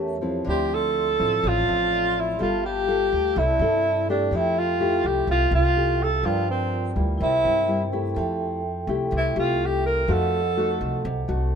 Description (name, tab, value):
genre	bossa nova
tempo	125 BPM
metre	4/4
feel	straight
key	F major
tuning	A4 = 440 Hz
part	nylon-string guitar	accompaniment	0.0-11.6 s	G2 to Bb4	-28 LUFS	left 3 dB	none
part	vibraphone with medium mallets	accompaniment	0.0-11.6 s	E4 to C6	-31 LUFS	right 4 dB	none
part	upright bass	bass	0.0-11.6 s	G1 to G2	-27 LUFS	equal	none
part	breathy tenor saxophone	melody	0.5-11.1 s	C4 to Bb4	-22 LUFS	right 1 dB	none
room	light reverb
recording	minimal, uncompressed stereo recording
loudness	-20 LUFS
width	side -7 dB against mid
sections	0.0-8.2 A section; 8.2-11.6 B section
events	vibraphone fill 0.0-0.5; tenor saxophone solo 8.2-11.6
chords	0.5 Dm9; 2.4 Gm9; 3.4 C13; 4.3 Fmaj9; 6.2 Gm7; 7.2 C7; 8.2 Fmaj9; 10.1 F7b9